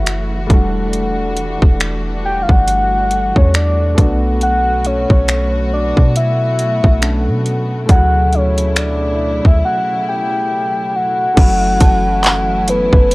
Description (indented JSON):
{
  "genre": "contemporary R&B",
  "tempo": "69 BPM",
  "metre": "4/4",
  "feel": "swing 58% on 16ths",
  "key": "B minor",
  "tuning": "A4 = 440 Hz",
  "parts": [
    { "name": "soft octave-layered synth lead", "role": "melody", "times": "0.0-13.1 s", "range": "B4 to G5", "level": "-17 LUFS", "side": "equal", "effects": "chorus" },
    { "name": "warm grand piano", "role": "accompaniment", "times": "0.0-13.1 s", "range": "C#3 to A4", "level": "-23 LUFS", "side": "left 1 dB", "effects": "none" },
    { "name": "dark studio string section", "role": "sustained chords", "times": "0.0-13.1 s", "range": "B2 to F#4", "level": "-23 LUFS", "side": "equal", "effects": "none" },
    { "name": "clean 808-style bass", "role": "bass", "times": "0.0-13.1 s", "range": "E1 to B2", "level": "-17 LUFS", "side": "equal", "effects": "none" },
    { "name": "trap drum kit", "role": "drums", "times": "0.1-13.1 s", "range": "crash cymbal, finger snaps, handclaps, hi-hat, kick drum", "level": "-12 LUFS", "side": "equal", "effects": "none" },
    { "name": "synth chime", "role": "texture", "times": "11.8-13.0 s", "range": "A5", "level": "-31 LUFS", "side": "right 3 dB", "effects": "none" }
  ],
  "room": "digital ambience",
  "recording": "dry, gritty hardware recording, cassette tape",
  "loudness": "-12 LUFS",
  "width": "side -22 dB against mid",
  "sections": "0.0-11.4 A section; 11.4-13.1 B section",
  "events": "break 9.6-11.4",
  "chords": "0.0 F#m7; 0.5 Em11; 4.0 Bm7; 7.9 Dmaj9; 11.4 F#m7"
}